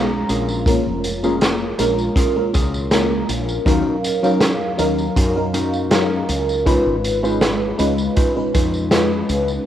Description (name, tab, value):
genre	vaporwave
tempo	80 BPM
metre	4/4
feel	straight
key	unclear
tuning	A4 = 440 Hz
part	FM electric piano with soft pad layer	accompaniment	0.0-9.6 s	Gb3 to Bb5	-19 LUFS	equal	phaser, lush chorus, tape echo
part	mellow electric guitar	riff	0.0-9.1 s	Cb4 to Cb5	-24 LUFS	left 1 dB	wide subtle chorus, tape echo
part	woody fretless electric bass	bass	0.0-9.6 s	F1 to Gb2	-25 LUFS	equal	wide subtle chorus
part	raw garage drum kit	drums	0.3-9.6 s	hi-hat, snare drum, tambourine	-23 LUFS	equal	none
part	kick drum	drums	0.7-8.7 s	none	-20 LUFS	equal	none
room	light reverb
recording	rough home demo mix, cassette tape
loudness	-16 LUFS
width	side -11 dB against mid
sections	0.0-9.7 A section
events	none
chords	0.3 Bbm7; 3.7 Ebm7; 6.7 Db9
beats	| 0.67 1.42 2.17 2.92 | 3.67 4.42 5.17 5.92 | 6.67 7.42 8.17 8.92